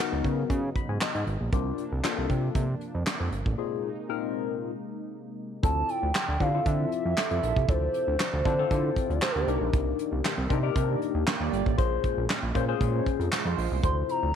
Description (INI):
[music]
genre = early-eighties boogie funk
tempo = 117 BPM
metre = 4/4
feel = straight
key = unclear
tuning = A4 = 439 Hz
[part]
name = barky tine electric piano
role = accompaniment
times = 0.0-14.3 s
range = Bb2 to B5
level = -31 LUFS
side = left 13 dB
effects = overdrive, phaser
[part]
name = brassy analog pad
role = sustained chords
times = 0.0-14.4 s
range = Bb2 to E5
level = -39 LUFS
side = equal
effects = chorus
[part]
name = soft brush drum kit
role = drums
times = 0.0-14.2 s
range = handclaps, hi-hat, kick drum, snare drum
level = -29 LUFS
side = right 1 dB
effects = none
[part]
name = fat analog bass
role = bass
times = 0.1-14.3 s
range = G1 to D3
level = -28 LUFS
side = right 1 dB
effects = none
[part]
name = gliding portamento lead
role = melody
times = 5.6-9.5, 13.8-14.4 s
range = Bb4 to C6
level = -29 LUFS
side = right 1 dB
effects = chorus, tremolo, slapback echo
[part]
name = mellow synth brass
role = second line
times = 6.8-13.8 s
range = F3 to D5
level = -34 LUFS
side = right 15 dB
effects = chorus
[sound]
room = small room ambience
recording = 1960s-style stereo with parts hard left and right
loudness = -25 LUFS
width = side -8 dB against mid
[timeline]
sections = 0.0-5.6 A section; 5.6-14.4 B section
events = tine electric piano fill 0.5-1.5; break 3.6-5.6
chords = 0.0 C#9sus4; 1.5 C9sus4; 3.6 Bb9sus4; 5.6 Dm9; 9.5 Cm9; 11.8 Bbm9; 13.8 Dm9